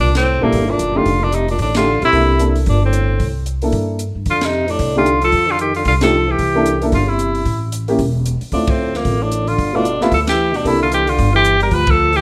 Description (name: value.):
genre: jazz, small-group swing and bop.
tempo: 226 BPM.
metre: 4/4.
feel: swing 59% on 8ths.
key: C mixolydian.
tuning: A4 = 441 Hz.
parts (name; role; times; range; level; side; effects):
clear tenor saxophone; melody; 0.0-12.2 s; Bb3 to B4; -20 LUFS; equal; plate reverb.
breathy trombone; second line; 0.0-12.2 s; F2 to G3; -24 LUFS; equal; none.
upright bass; bass; 0.0-12.2 s; E1 to G2; -21 LUFS; equal; none.
compact cocktail drum kit; drums; 0.1-12.2 s; hi-hat, kick drum, ride cymbal, snare drum; -27 LUFS; equal; none.
warm upright piano; accompaniment; 0.4-11.1 s; A3 to A4; -21 LUFS; equal; none.
room: moderate large studio reverb, RT60 0.9 s.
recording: none.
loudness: -16 LUFS.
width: mono.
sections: 0.0-12.2 A section.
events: band accent 0.1, 1.7, 4.4, 6.0, 8.7, 10.3, 11.8.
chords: 0.0 C13; 1.1 F6; 2.1 C13; 4.3 F6; 6.4 C13; 7.5 A5; 8.5 Dm7; 9.6 G13; 10.7 C13.